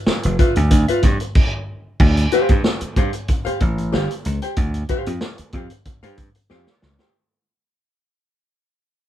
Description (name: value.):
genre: funk.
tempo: 93 BPM.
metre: 4/4.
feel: straight.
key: D dorian.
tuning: A4 = 443 Hz.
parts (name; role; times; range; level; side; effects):
archtop guitar, miked and amplified; accompaniment; 0.1-7.1 s; F4 to G5; -22 LUFS; left 2 dB; none.
slap bass; bass; 0.1-7.0 s; F1 to G2; -20 LUFS; equal; none.
vintage drum kit; drums; 0.1-7.1 s; crash cymbal, hi-hat, kick drum, snare drum; -18 LUFS; equal; none.
room: light reverb.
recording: band playing live in one room.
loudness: -16 LUFS.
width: side -12 dB against mid.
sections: 0.0-2.0 A section; 2.0-7.1 B section.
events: stop 1.4-2.0; fade-out 2.0-7.1; drum fill 6.5-7.1.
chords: 0.0 G6 (rootless); 2.0 Dm7 (rootless).